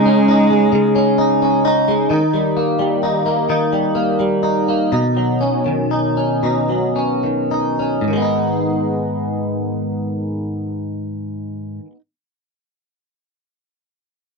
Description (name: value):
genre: pop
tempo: 35-44 BPM (dotted quarters)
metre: 6/8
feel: straight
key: G# minor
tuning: A4 = 440 Hz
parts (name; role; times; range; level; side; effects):
- warm cello; melody; 0.0-1.6 s; G#3; -17 LUFS; equal; none
- direct-recorded clean electric guitar; accompaniment; 0.0-12.0 s; G#2 to D#4; -16 LUFS; equal; double-tracked left and right
room: light reverb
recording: dry, close 1970s-style studio recording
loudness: -15 LUFS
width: side -3 dB against mid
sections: 0.0-2.1 A section; 2.1-8.1 B section; 8.1-11.5 C section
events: slowing down 2.1-8.1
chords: 0.0 C#sus2; 2.1 D#; 4.9 Badd9; 8.1 G#m